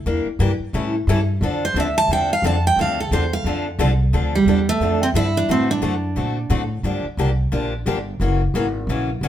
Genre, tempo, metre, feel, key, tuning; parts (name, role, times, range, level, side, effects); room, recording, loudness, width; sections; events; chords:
acoustic string swing (jazz manouche); 177 BPM; 4/4; swing 59% on 8ths; D minor; A4 = 439 Hz
upright bass; bass; 0.0-9.3 s; F#1 to Bb2; -21 LUFS; equal
picked steel-string acoustic guitar; accompaniment; 0.1-9.3 s; C#3 to A4; -24 LUFS; left 3 dB
picked steel-string acoustic guitar; melody; 1.6-6.7 s; G3 to A5; -19 LUFS; right 3 dB
moderate studio reverb, RT60 0.7 s; band playing live in one room; -18 LUFS; side -11 dB against mid
0.0-4.1 A section; 4.1-9.3 B section
steel-string acoustic guitar solo 0.0-4.1
0.1 Em7b5; 0.7 A7; 1.4 Dm7; 5.5 D7; 6.8 Gm7; 8.2 F#9